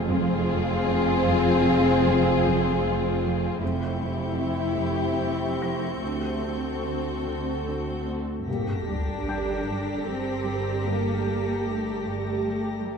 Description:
cinematic, suspense film score; 76 BPM; 3/4; straight; F harmonic minor, G minor from 8.5 s; A4 = 441 Hz
rich studio violin section; melody; 0.0-13.0 s; G4 to Bb4; -36 LUFS; left 3 dB
rich studio violin section; second line; 0.0-13.0 s; E4 to A4; -33 LUFS; left 4 dB
rich studio viola section; accompaniment; 0.0-13.0 s; C4 to G4; -31 LUFS; right 1 dB
evolving wavetable pad; sustained chords; 0.0-13.0 s; C4 to G5; -34 LUFS; right 2 dB; chorus, built-in reverb, phaser
mellow French horn section; sustained chords; 0.0-11.2 s; Bb3 to Ab4; -28 LUFS; left 4 dB
rich studio cello section; bass; 0.0-13.0 s; D2 to D4; -31 LUFS; right 2 dB
rich studio double bass section; bass; 0.0-13.0 s; F1 to D2; -30 LUFS; right 2 dB
rich studio cello section; riff; 0.1-13.0 s; F2 to D4; -34 LUFS; right 2 dB
rich studio violin section; texture; 3.6-12.8 s; Db6 to B6; -42 LUFS; left 4 dB
felt-muted upright piano; texture; 5.6-13.0 s; G5 to Bb6; -43 LUFS; left 3 dB
sub drop; sound effects; 8.5-10.9 s; -32 LUFS; left 1 dB
wet scoring stage reverb, RT60 1.6 s; minimal, uncompressed stereo recording; -23 LUFS; side -6 dB against mid
0.0-8.5 A section; 8.5-13.0 B section
impact 8.5-10.9
0.0 Fm; 3.6 C/F; 6.0 D7; 8.5 Gmadd9
0.50 | 1.28 2.06 2.84 | 3.62 4.40 5.20 | 6.01 6.84 7.66 | 8.47 9.28 10.08 | 10.87 11.66 12.45

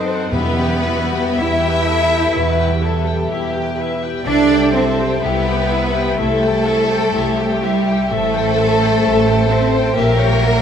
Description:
classical, slow romantic movement for symphony orchestra; 62 BPM; 4/4; rubato; E minor; A4 = 441 Hz
rich chamber violin section; melody; 0.0-10.6 s; E4 to B4; -23 LUFS; left 2 dB
warm studio violin section; second line; 0.0-10.6 s; G4 to E5; -21 LUFS; left 2 dB
rich chamber viola section; accompaniment; 0.0-10.6 s; E4 to G5; -25 LUFS; left 2 dB
warm French horn section; sustained chords; 0.0-10.6 s; G4 to E5; -23 LUFS; left 3 dB
concert harp; arpeggios; 0.0-10.6 s; E2 to C#5; -25 LUFS; left 5 dB
rich chamber cello section; bass; 0.0-10.6 s; G3 to E4; -20 LUFS; right 2 dB
rich symphonic double bass section; bass; 0.0-10.6 s; A1 to F#2; -21 LUFS; right 3 dB
timpani; percussion; 0.3-1.8 s; E2; -25 LUFS; equal
wet scoring stage reverb, RT60 2.0 s; -14 LUFS; side -8 dB against mid
0.0-10.6 A section
0.3 Em; 4.3 C; 8.1 Am7; 10.0 A#dim7
| 0.33 1.36 2.33 3.30 | 4.26 5.22 6.18 7.15 | 8.11 9.05 9.96

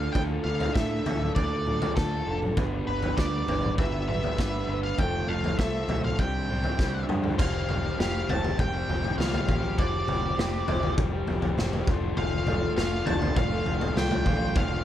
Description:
indie rock; 100 BPM; 4/4; straight; A4 = 441 Hz
octave-fuzz lead guitar; melody; 0.0-14.8 s; A4 to A5; -32 LUFS; equal; distortion, slapback echo
electric guitar through a small old amp; riff; 0.0-14.8 s; C3 to B4; -34 LUFS; right 7 dB; wide subtle chorus, slapback echo
raw garage guitar; riff; 0.0-14.8 s; C3 to B4; -34 LUFS; left 8 dB; overdrive
growling picked electric bass; bass; 0.0-14.8 s; F1 to A2; -31 LUFS; equal; overdrive
raw garage drum kit; drums; 0.1-14.7 s; crash cymbal, kick drum, snare drum, toms; -28 LUFS; equal
light reverb; -24 LUFS; side -11 dB against mid
0.0-7.4 A section; 7.4-14.8 B section
drum fill 6.8-7.4
0.0 Dm; 2.6 G; 5.0 F; 6.2 Csus2; 7.4 Fsus2; 11.9 Dm/F
| 0.15 0.76 1.36 1.97 | 2.57 3.17 3.78 4.38 | 4.98 5.59 6.19 6.79 | 7.39 7.99 8.59 9.19 | 9.78 10.38 10.98 11.58 | 12.17 12.77 13.36 13.96 | 14.55

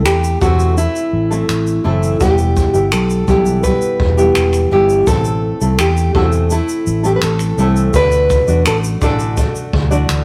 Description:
acoustic pop; 84 BPM; 4/4; straight; A4 = 440 Hz
fingerpicked plugged-in steel-string acoustic guitar; melody; 0.0-10.2 s; E4 to B4; -21 LUFS; equal
nylon-string guitar; accompaniment; 0.0-10.2 s; A2 to D5; -20 LUFS; equal
vintage muted fingered electric bass; bass; 0.0-10.2 s; E1 to E2; -18 LUFS; equal
jazz brush drum kit; drums; 0.1-10.2 s; finger snaps, kick drum, shaker; -22 LUFS; equal
light reverb; rough rehearsal-room recording, warm saturation; -14 LUFS; mono
0.0-10.2 A section
0.0 Am; 2.2 Em; 5.1 Am; 7.9 Dadd9
0.05 0.77 1.49 | 2.21 2.92 3.64 4.36 | 5.07 5.79 6.51 7.22 | 7.94 8.66 9.37 10.09

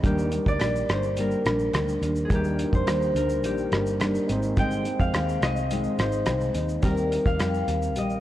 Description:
indie pop, bedroom pop; 106 BPM; 4/4; straight; Eb major; A4 = 440 Hz
concert harp; melody; 0.0-8.2 s; G4 to G5; -28 LUFS; left 1 dB; wide subtle chorus
nylon-string guitar; accompaniment; 0.0-8.2 s; Ab2 to Bb4; -30 LUFS; left 1 dB; wide subtle chorus, vibrato effect
overdriven tine electric piano; accompaniment; 0.0-8.2 s; G3 to C5; -31 LUFS; right 1 dB; cassette tape
vintage muted picked electric bass; bass; 0.0-8.2 s; G1 to F2; -29 LUFS; equal
cloth-damped thuddy drum kit; drums; 0.0-8.2 s; hi-hat, kick drum, rim click, shaker; -28 LUFS; equal
group handclap; percussion; 0.6-7.5 s; -46 LUFS; right 2 dB
moderate concert hall reverb, RT60 2.5 s; worn, warbling old tape, cassette tape, warbly pitch drift; -22 LUFS; side -13 dB against mid
0.0-8.2 A section
0.0 Ebmaj7; 4.3 Ab; 6.8 Eb6
| 0.04 0.60 1.17 1.74 | 2.30 2.87 3.44 4.00 | 4.57 5.13 5.70 6.27 | 6.83 7.40 7.96

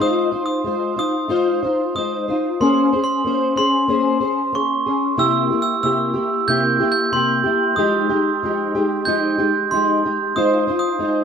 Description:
indie pop; 93 BPM; 4/4; straight; Ab major; A4 = 442 Hz
glockenspiel with hard plastic mallets; melody; 0.0-11.2 s; C6 to G6; -20 LUFS; right 4 dB; lush chorus, slapback echo
fingerpicked plugged-in steel-string acoustic guitar; accompaniment; 0.0-11.2 s; C3 to C5; -19 LUFS; left 2 dB; ensemble chorus, vibrato effect
moderate small room reverb, RT60 0.5 s; rough home demo mix; -16 LUFS; side -7 dB against mid
0.0-11.2 A section
0.0 Ab6; 2.6 Bbm9; 5.2 C7; 7.8 Fm9; 10.4 Ab6
| 0.01 0.66 1.31 1.95 | 2.60 3.25 3.90 4.54 | 5.19 5.83 6.48 7.13 | 7.78 8.42 9.07 9.72 | 10.36 11.01

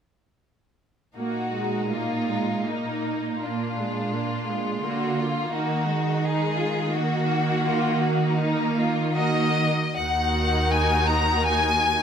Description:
classical, slow romantic movement for string orchestra; 68-88 BPM; 3/4; rubato; Eb minor; A4 = 441 Hz
clear chamber violin section; melody; 1.2-12.0 s; Eb4 to Bb5; -27 LUFS; left 3 dB
rich symphonic violin section; second line; 1.2-12.0 s; D4 to Bb4; -28 LUFS; left 1 dB
rich symphonic viola section; accompaniment; 1.2-12.0 s; Eb3 to Eb4; -29 LUFS; right 2 dB
rich symphonic cello section; bass; 1.2-12.0 s; Eb2 to Eb3; -28 LUFS; right 3 dB
rich symphonic double bass section; bass; 10.0-12.0 s; Eb2; -26 LUFS; right 1 dB
moderate scoring stage reverb, RT60 1.6 s; close, detailed microphones; -22 LUFS; side -8 dB against mid
1.2-10.0 A section; 10.0-12.0 B section
1.2 Ebm/Bb; 3.4 Bb7; 5.5 Ebm
| 1.15 1.92 2.67 | 3.42 4.14 4.84 | 5.53 6.22 6.93 | 7.64 8.38 9.14 | 9.97 10.74 11.48

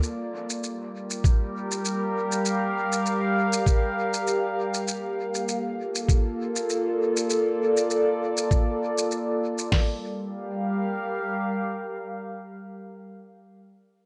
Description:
ambient dub; 99 BPM; 4/4; swing 54% on 16ths; G minor; A4 = 440 Hz
warbly tape-like pad; sustained chords; 0.0-12.9 s; G3 to F5; -28 LUFS; equal; chorus, built-in reverb, phaser
shaker; drums; 0.0-9.7 s; -34 LUFS; equal; studio reverb, dub echo
lo-fi sampler-style drum kit; drums; 1.2-9.9 s; hi-hat, kick drum, snare drum; -23 LUFS; equal; studio reverb
wet spring reverb, RT60 1.7 s; -26 LUFS; mono
0.0-9.7 A section; 9.7-12.1 B section
0.0 Gm7; 4.9 Bbmaj7; 9.7 Gm7
| 0.03 0.63 1.24 1.84 | 2.45 3.06 3.66 4.27 | 4.87 5.48 6.09 6.69 | 7.30 7.91 8.51 9.12 | 9.72 10.33 10.94 11.54

